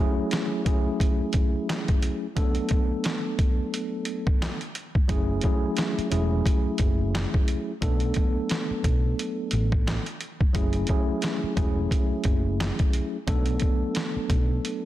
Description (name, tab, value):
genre	hip hop, boom-bap hip-hop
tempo	88 BPM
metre	4/4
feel	swing 58% on 16ths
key	B dorian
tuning	A4 = 439 Hz
part	mellow tine electric piano	accompaniment	0.0-14.9 s	F#3 to A4	-28 LUFS	equal	medium stereo tremolo, high-pass filter, low-pass filter
part	trip hop sampler-style drum kit	drums	0.3-14.8 s	handclaps, hi-hat, kick drum, snare drum	-24 LUFS	equal	none
part	hollow-body short-scale fingered electric bass	bass	5.1-14.6 s	E1 to B1	-27 LUFS	equal	none
room	digital ambience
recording	dense, heavily limited modern master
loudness	-23 LUFS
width	side -14 dB against mid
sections	0.0-14.9 A section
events	break 0.0-5.1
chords	0.0 F#m9; 2.4 Bm7; 5.1 F#m9; 7.8 Bm7; 10.5 F#m9; 13.3 Bm7